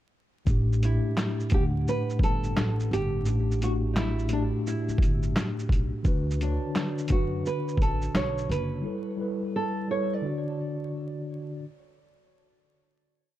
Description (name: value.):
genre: lo-fi hip hop.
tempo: 86 BPM.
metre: 4/4.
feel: swing 66% on 16ths.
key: unclear.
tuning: A4 = 439 Hz.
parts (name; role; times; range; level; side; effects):
mellow tine electric piano; accompaniment; 0.5-11.7 s; A2 to F#5; -30 LUFS; left 1 dB; medium stereo tremolo, cassette tape, low-pass filter.
upright bass; bass; 0.5-8.8 s; F#1 to F#2; -29 LUFS; equal; none.
lo-fi sampler-style drum kit; drums; 0.5-8.7 s; handclaps, hi-hat, kick drum, shaker, snare drum; -26 LUFS; equal; overdrive, vintage 12-bit sampler grit.
nylon-string guitar; melody; 0.8-11.3 s; D4 to D5; -33 LUFS; right 3 dB; low-pass filter, tape echo.
room: little or no reverb.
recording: dark, warm production, vinyl crackle.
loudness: -25 LUFS.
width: side -13 dB against mid.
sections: 0.5-11.6 A section.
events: none.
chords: 0.5 A7sus4; 6.0 D6; 8.8 G69; 10.2 D.